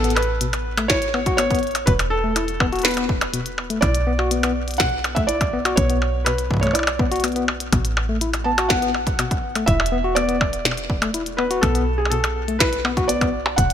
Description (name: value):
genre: IDM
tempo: 123 BPM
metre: 4/4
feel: straight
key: B minor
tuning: A4 = 439 Hz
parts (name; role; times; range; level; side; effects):
- felt-muted upright piano; melody; 0.0-13.7 s; G#4 to A5; -24 LUFS; right 2 dB; digital delay
- bright tine electric piano; arpeggios; 0.0-13.6 s; B2 to F#4; -25 LUFS; left 4 dB; vintage 12-bit sampler grit, ping-pong delay
- woody FM bass; bass; 0.0-13.7 s; E1 to B1; -26 LUFS; equal; none
- glitchy drum kit; drums; 0.0-13.7 s; hi-hat, percussion blips, snare drum; -23 LUFS; equal; none
- electronic kick drum; drums; 0.9-13.7 s; none; -23 LUFS; equal; none
room: light reverb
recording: bright 1980s-style digital production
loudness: -18 LUFS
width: side -9 dB against mid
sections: 0.0-13.7 A section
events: none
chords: 0.0 Aadd9; 1.9 Esus4; 3.8 Bm; 7.7 Asus2; 9.7 E7(no3); 11.6 Bm7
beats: 0.41 0.90 1.38 | 1.87 2.36 2.85 3.33 | 3.82 4.31 4.80 5.29 | 5.78 6.26 6.75 7.24 | 7.73 8.21 8.70 9.19 | 9.68 10.16 10.65 11.14 | 11.63 12.12 12.60 13.09 | 13.58